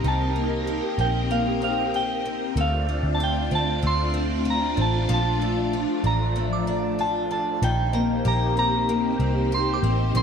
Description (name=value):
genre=dream pop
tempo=95 BPM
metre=4/4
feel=straight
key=unclear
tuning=A4 = 440 Hz
part: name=soft synth bell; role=melody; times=0.0-10.2 s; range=F5 to C6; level=-27 LUFS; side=right 1 dB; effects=chorus, phaser, ping-pong delay
part: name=phased string machine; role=sustained chords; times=0.0-10.2 s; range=F3 to Eb5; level=-28 LUFS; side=equal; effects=ensemble chorus, phaser
part: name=picked twelve-string acoustic guitar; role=arpeggios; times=0.0-10.2 s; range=Eb3 to G4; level=-28 LUFS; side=left 3 dB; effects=wide subtle chorus, ping-pong delay
part: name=vintage muted picked electric bass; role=bass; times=0.0-10.2 s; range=A1 to D2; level=-25 LUFS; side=equal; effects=none
part: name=glassy synth bell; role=texture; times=6.5-10.2 s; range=Bb5 to D6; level=-37 LUFS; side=right 5 dB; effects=chorus, phaser, ping-pong delay
room=moderate lush hall reverb, RT60 1.7 s, digital ambience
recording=dark, warm production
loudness=-21 LUFS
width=side -7 dB against mid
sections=0.0-7.6 A section; 7.6-10.2 B section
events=none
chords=0.0 Cm7; 2.6 Dm7; 5.1 Bbmaj7; 7.6 Cm7/Bb